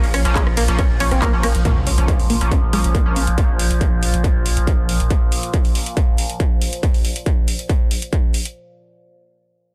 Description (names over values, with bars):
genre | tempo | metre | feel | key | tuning
driving peak-time techno | 139 BPM | 4/4 | straight | Bb minor | A4 = 440 Hz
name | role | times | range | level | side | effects
sync-sweep polysynth | stabs | 0.0-3.3 s | F3 to Db4 | -29 LUFS | equal | chorus, phaser, sidechain pumping, delay
saturated sub bass | bass | 0.0-5.1 s | Bb1 | -22 LUFS | equal | sidechain pumping, low-pass filter
overtone-sweeping drone | drone | 0.0-6.9 s | Bb2 to F3 | -30 LUFS | equal | chorus, built-in reverb, sidechain pumping
techno drum kit | drums | 0.0-8.5 s | handclaps, hi-hat, ride cymbal, rim click | -28 LUFS | equal | sidechain pumping on hats, sidechain pumping on cymbals
tight sequenced synth | riff | 0.1-3.2 s | Ab3 to Db4 | -27 LUFS | equal | chorus, phaser, sidechain pumping, delay
electronic kick drum | drums | 0.4-8.2 s | none | -20 LUFS | equal | distortion
impact | sound effects | 1.7-3.4 s | none | -28 LUFS | equal | none
room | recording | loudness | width
little or no reverb | dense, heavily limited modern master, lossy compression artefacts | -18 LUFS | mono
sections
0.0-1.7 A section; 1.7-8.6 B section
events
drop 0.0-1.7; impact 1.7-3.4; filter sweep on synth arpeggio sound 1.7-3.4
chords
0.0 Bbm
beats
0.36 0.79 1.22 | 1.65 2.08 2.51 2.95 | 3.38 3.81 4.24 4.67 | 5.10 5.54 5.97 6.40 | 6.83 7.26 7.69 8.13